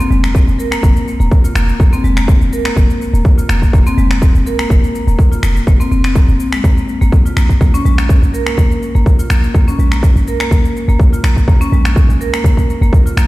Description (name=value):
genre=afro house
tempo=124 BPM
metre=4/4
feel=swing 53% on 16ths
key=Bb minor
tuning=A4 = 440 Hz
part: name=marimba with hard mallets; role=arpeggios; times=0.0-13.3 s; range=Ab3 to Bb4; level=-18 LUFS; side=left 1 dB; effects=sidechain pumping, tape echo
part: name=electronic shaker and finger snaps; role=drums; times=0.0-13.3 s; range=none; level=-23 LUFS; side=left 1 dB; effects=none
part: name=warm 808-style bass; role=bass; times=0.1-13.3 s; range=Eb1 to Bb1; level=-13 LUFS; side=equal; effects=sidechain pumping
part: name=electronic kick drum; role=drums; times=0.3-13.0 s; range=none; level=-10 LUFS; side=equal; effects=none
room=little or no reverb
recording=played on a big sound system in a bare room, stone room reverb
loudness=-10 LUFS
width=side -19 dB against mid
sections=0.0-13.3 A section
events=none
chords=none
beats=0.35 | 0.83 1.32 1.80 2.28 | 2.77 3.25 3.74 4.22 | 4.70 5.19 5.67 6.16 | 6.64 7.12 7.61 8.09 | 8.57 9.06 9.54 10.03 | 10.51 10.99 11.48 11.96 | 12.45 12.93